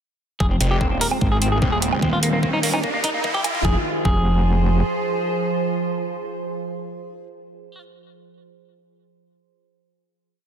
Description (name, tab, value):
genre	heavy wobble dubstep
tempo	148 BPM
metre	4/4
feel	half-time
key	F minor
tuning	A4 = 440 Hz
part	semi-hollow electric guitar	melody	0.4-7.8 s	Bb3 to Bb4	-25 LUFS	equal	ping-pong delay
part	evolving wavetable pad	sustained chords	0.9-7.4 s	Eb3 to C5	-26 LUFS	right 2 dB	chorus, built-in reverb, sidechain pumping
part	metallic wobble bass	bass	0.4-4.8 s	Eb1 to Ab1	-20 LUFS	equal	chorus, overdrive
part	electronic kick drum	drums	0.4-4.2 s	none	-23 LUFS	equal	overdrive
part	riser	sound effects	1.7-3.6 s	none	-28 LUFS	right 1 dB	none
part	snarling distorted saw bass	bass	0.6-2.0 s	Eb1 to F1	-22 LUFS	equal	distortion, overdrive
part	electronic hi-hat and woodblock	drums	0.6-3.5 s	none	-24 LUFS	right 4 dB	none
room	light reverb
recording	dense, heavily limited modern master, high-pass filter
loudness	-18 LUFS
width	side -8 dB against mid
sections	0.4-3.6 build; 3.6-6.9 final chord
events	build-up 0.4-3.6; filter sweep 0.4-3.6; riser 1.7-3.6; drum fill 2.0-3.6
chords	0.4 Fm; 2.0 Eb; 3.6 Fm